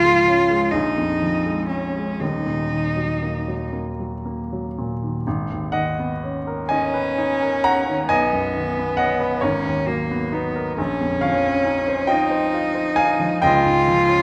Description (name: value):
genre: classical, impressionist duo for cello and grand piano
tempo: 39-46 BPM (dotted quarters)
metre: 6/8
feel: rubato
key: Eb minor, G# minor from 5.3 s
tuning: A4 = 440 Hz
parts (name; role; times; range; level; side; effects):
- rich cello; melody; 0.0-14.2 s; A#3 to F4; -23 LUFS; equal; none
- warm baby grand piano; accompaniment; 0.0-14.2 s; Eb1 to A#5; -24 LUFS; equal; none
room: wet recital hall reverb, RT60 1.6 s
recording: none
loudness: -21 LUFS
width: mono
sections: 0.0-5.3 A section; 5.3-14.2 B section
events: none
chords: 0.0 Db; 0.7 Bbm7; 2.2 Ebm; 5.3 G#m11; 8.1 B69; 9.4 G#m11; 10.8 A#madd9; 13.4 C#add9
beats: 0.74 | 2.21 3.74 | 5.25 6.69 | 8.08 9.42 | 10.78 12.10 | 13.45